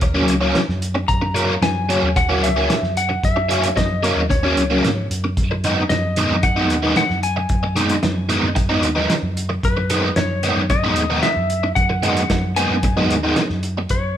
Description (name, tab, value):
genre	psychedelic rock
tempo	112 BPM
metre	4/4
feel	straight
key	unclear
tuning	A4 = 440 Hz
part	clean lap steel guitar	melody	0.0-14.2 s	A#4 to A#5	-23 LUFS	left 3 dB	none
part	biting overdriven guitar	riff	0.0-13.8 s	C#3 to D#4	-19 LUFS	equal	rotary speaker
part	picked electric bass	bass	0.0-14.1 s	C#2 to G#2	-23 LUFS	equal	none
part	cloth-damped thuddy drum kit	drums	0.0-14.0 s	hi-hat, kick drum, snare drum	-22 LUFS	equal	none
room	moderate large studio reverb, RT60 1.1 s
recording	band playing live in one room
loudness	-16 LUFS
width	side -10 dB against mid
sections	0.0-13.9 A section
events	none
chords	0.0 F#; 5.4 G#m7